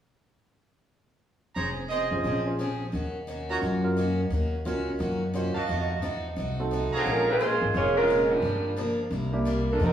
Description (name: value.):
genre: jazz.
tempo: 175 BPM.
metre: 4/4.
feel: swing 63% on 8ths.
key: Bb minor.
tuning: A4 = 440 Hz.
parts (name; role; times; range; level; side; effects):
picked steel-string acoustic guitar; accompaniment; 1.6-9.9 s; F2 to Ab4; -32 LUFS; left 1 dB; none.
brilliant trumpet section; stabs; 1.6-7.4 s; Gb4 to Bb5; -30 LUFS; right 4 dB; none.
upright bass; bass; 1.6-9.9 s; F1 to Gb2; -30 LUFS; equal; none.
warm concert grand piano; accompaniment; 2.1-9.4 s; Bb3 to C5; -31 LUFS; right 1 dB; none.
mellow saxophone section; melody; 7.0-9.9 s; F3 to Db5; -24 LUFS; right 1 dB; none.
room: wet large studio reverb, RT60 1.3 s.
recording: band playing live in one room, small room ambience.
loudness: -24 LUFS.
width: side -10 dB against mid.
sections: 1.6-7.1 A section; 7.1-9.9 B section.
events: none.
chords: 1.6 Bbm9/F; 2.9 Ebm7; 5.7 F7b9; 7.1 Bbm7; 8.4 Gm7; 9.1 C7.